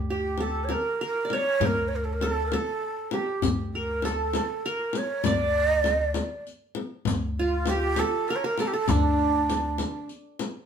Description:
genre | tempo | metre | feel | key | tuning
Arabic maqam ensemble | 66 BPM (dotted quarters) | 6/8 | straight | D maqam nahawand | A4 = 439 Hz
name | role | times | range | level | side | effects
qanun | second line | 0.0-10.4 s | D4 to D5 | -30 LUFS | right 1 dB | none
upright bass | bass | 0.0-9.8 s | D2 | -30 LUFS | equal | none
breathy mellow ney | melody | 0.1-10.1 s | D4 to D5 | -27 LUFS | right 3 dB | none
frame drum | percussion | 0.4-10.5 s | none | -30 LUFS | left 5 dB | none
darbuka | percussion | 0.7-10.5 s | none | -35 LUFS | left 3 dB | none
riq | percussion | 3.4-10.5 s | none | -37 LUFS | left 4 dB | none
room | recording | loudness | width
wet studio reverb, RT60 0.6 s | band playing live in one room | -24 LUFS | side -7 dB against mid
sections
0.0-10.7 A section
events
drum fill 2.8-3.4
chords
none

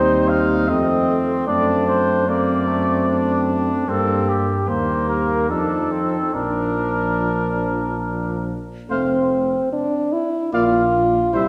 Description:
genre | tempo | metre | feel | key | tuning
classical, brass quintet | 70-76 BPM | 3/4 | rubato | Bb major | A4 = 440 Hz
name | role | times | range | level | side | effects
mellow trumpet | melody | 0.0-11.5 s | G4 to F5 | -26 LUFS | equal | none
warm trumpet | second line | 0.0-11.5 s | A3 to D5 | -29 LUFS | equal | none
clear French horn | accompaniment | 0.0-11.5 s | Bb3 to F4 | -24 LUFS | equal | none
mellow trombone | accompaniment | 0.0-11.5 s | F3 to Bb3 | -28 LUFS | equal | none
dark tuba | bass | 0.0-11.5 s | F1 to G2 | -27 LUFS | equal | none
room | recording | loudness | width
wet concert hall reverb, RT60 1.8 s | heard from further back in the room | -20 LUFS | mono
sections
0.0-8.9 A section; 8.9-11.5 B section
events
none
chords
0.0 Cm/Eb; 0.7 F; 1.5 D7/F#; 3.9 Gm; 4.7 Cm7/Eb; 5.5 F7; 6.3 Bb; 8.9 F; 10.5 Bb

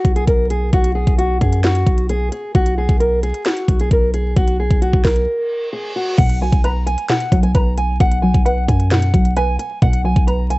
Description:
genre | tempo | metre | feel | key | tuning
hip hop, trap | 132 BPM | 4/4 | half-time | unclear | A4 = 440 Hz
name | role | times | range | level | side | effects
fingerpicked old ladder-braced acoustic guitar | melody | 0.0-10.6 s | F#4 to A#5 | -20 LUFS | equal | low-pass filter, cassette tape
warm 808-style bass | bass | 0.0-10.6 s | B1 to F#2 | -17 LUFS | equal | none
trap drum kit | drums | 0.0-10.6 s | crash cymbal, hi-hat, kick drum, snare drum | -17 LUFS | equal | cassette tape
reverse cymbal | sound effects | 5.4-6.2 s | none | -30 LUFS | right 2 dB | none
warbly dusty pluck | accompaniment | 6.2-10.6 s | B2 to B4 | -20 LUFS | equal | chorus, low-pass filter, cassette tape
room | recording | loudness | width
digital ambience | home recording on cassette, vinyl crackle, nothing above 8.0 kHz | -14 LUFS | side -21 dB against mid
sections
0.0-6.2 A section; 6.2-10.6 B section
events
break 5.3-6.2; reverse cymbal 5.4-6.2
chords
0.0 B5; 2.5 G#m9/B; 6.2 B5

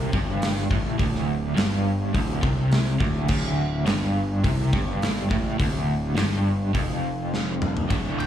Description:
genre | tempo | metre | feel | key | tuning
classic rock | 104 BPM | 4/4 | straight | D minor | A4 = 440 Hz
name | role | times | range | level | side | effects
crunchy overdriven guitar | riff | 0.0-8.3 s | D2 to D3 | -25 LUFS | equal | tremolo
fuzz picked electric bass | bass | 0.0-8.3 s | D1 to C2 | -28 LUFS | equal | overdrive
gated 80s drum kit | drums | 0.1-8.3 s | crash cymbal, hi-hat, kick drum, ride cymbal, snare drum, toms | -26 LUFS | equal | none
octave-fuzz lead guitar | melody | 8.2-8.3 s | G5 | -29 LUFS | right 2 dB | distortion
room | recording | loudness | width
light reverb | live gig heard through the venue's PA, club reverb | -21 LUFS | side -10 dB against mid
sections
0.0-7.9 A section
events
drum fill 7.3-7.9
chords
0.0 Dm

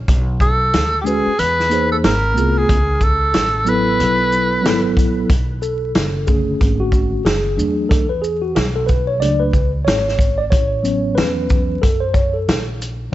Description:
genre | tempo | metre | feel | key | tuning
hip hop, jazz-hop | 92 BPM | 4/4 | swing 61% on 16ths | B dorian | A4 = 443 Hz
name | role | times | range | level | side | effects
upright bass | bass | 0.0-13.1 s | F#1 to F#2 | -22 LUFS | equal | none
vintage drum kit | drums | 0.1-13.0 s | hi-hat, kick drum, shaker, snare drum | -18 LUFS | equal | none
breathy tenor saxophone | melody | 0.4-5.0 s | G4 to B4 | -17 LUFS | equal | analog delay
mellow tine electric piano | accompaniment | 1.0-13.1 s | D3 to D5 | -19 LUFS | equal | medium stereo tremolo
room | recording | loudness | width
small room ambience | vinyl crackle, nothing above 7.8 kHz | -14 LUFS | side -14 dB against mid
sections
0.0-5.3 A section; 5.3-13.1 B section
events
tine electric piano solo 5.3-13.1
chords
0.1 Bm9; 1.4 E; 2.0 G#; 2.7 Amaj13; 4.0 B5; 5.3 Bm7; 7.6 E7sus4; 10.5 A6

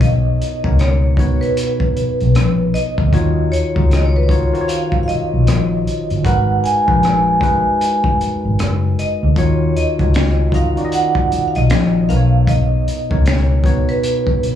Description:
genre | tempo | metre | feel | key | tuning
R&B, neo-soul | 77 BPM | 4/4 | swing 60% on 16ths | Eb minor | A4 = 440 Hz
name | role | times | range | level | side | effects
vibraphone with medium mallets | melody | 0.0-14.6 s | B4 to Ab5 | -20 LUFS | right 1 dB | slapback echo, tape echo
barky tine electric piano | accompaniment | 0.0-14.6 s | B2 to Eb5 | -21 LUFS | left 1 dB | overdrive, slapback echo
vintage muted fingered electric bass | bass | 0.0-14.5 s | Gb1 to Eb2 | -15 LUFS | left 1 dB | none
crunchy breakbeat drum kit | drums | 0.0-14.6 s | finger snaps, hi-hat, kick drum, rim click, snare drum | -21 LUFS | equal | none
room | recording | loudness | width
little or no reverb | live gig heard through the venue's PA, club ambience | -13 LUFS | side -10 dB against mid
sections
0.0-14.6 A section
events
none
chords
0.0 Bmaj7; 3.1 Ebm9; 6.2 Abm9; 9.4 Ebm9; 12.1 Bmaj7

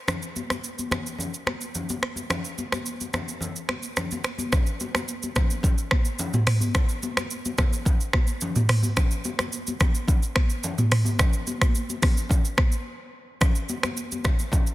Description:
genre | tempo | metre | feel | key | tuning
afrobeats | 108 BPM | 4/4 | straight | none | none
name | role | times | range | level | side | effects
afro-pop drum kit | drums | 0.1-14.7 s | finger snaps, hi-hat, kick drum, rim click, shaker, toms | -23 LUFS | equal | soft clipping on snare
congas | percussion | 0.1-14.7 s | none | -31 LUFS | left 2 dB | none
room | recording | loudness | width
digital ambience | dense, heavily limited modern master | -22 LUFS | side -17 dB against mid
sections
0.0-4.5 A section; 4.5-14.7 B section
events
break 12.9-13.4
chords
none

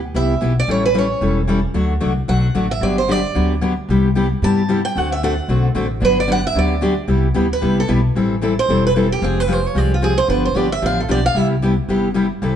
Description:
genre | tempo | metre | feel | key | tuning
acoustic string swing (jazz manouche) | 225 BPM | 4/4 | swing 57% on 8ths | G major, C major from 7.1 s | A4 = 442 Hz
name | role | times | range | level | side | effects
upright bass | bass | 0.0-12.6 s | E1 to G2 | -20 LUFS | equal | none
picked steel-string acoustic guitar | accompaniment | 0.1-12.6 s | C3 to A4 | -18 LUFS | left 2 dB | none
picked swing-style acoustic guitar | melody | 0.2-11.5 s | F4 to A5 | -20 LUFS | right 3 dB | none
room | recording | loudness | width
moderate studio reverb, RT60 0.9 s | heard from further back in the room, nothing above 10.7 kHz | -15 LUFS | side -9 dB against mid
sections
0.0-7.1 A section; 7.1-12.6 A section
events
steel-string acoustic guitar solo 0.0-7.1, 7.1-12.6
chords
0.0 Em; 0.7 A7; 1.8 D; 2.8 Gmaj7; 3.9 Cmaj7; 5.0 D7; 6.0 Gmaj7; 7.1 Cmaj7; 8.2 Am7; 9.2 Fmadd9; 10.3 G7; 11.4 Cmaj7

